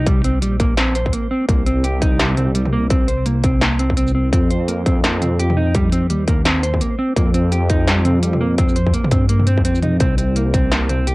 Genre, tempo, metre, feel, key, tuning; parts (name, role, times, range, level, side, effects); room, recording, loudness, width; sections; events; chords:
half-time drum and bass; 169 BPM; 4/4; swing 60% on 16ths, half-time; A4 = 439 Hz
mellow electric guitar; arpeggios; 0.0-11.1 s; G3 to C5; -20 LUFS; right 2 dB; tape echo
dark detuned saw bass; bass; 0.0-11.1 s; Bb1 to G2; -18 LUFS; equal
electronic kick drum; drums; 0.1-10.6 s; -18 LUFS; equal; distortion
industrial drum kit; drums; 0.1-11.1 s; hi-hat, shaker, snare drum, toms; -21 LUFS; equal
light reverb; home recording on cassette; -14 LUFS; side -22 dB against mid
0.0-11.1 A section
0.0 C5; 4.3 Fsus2; 10.0 N.C.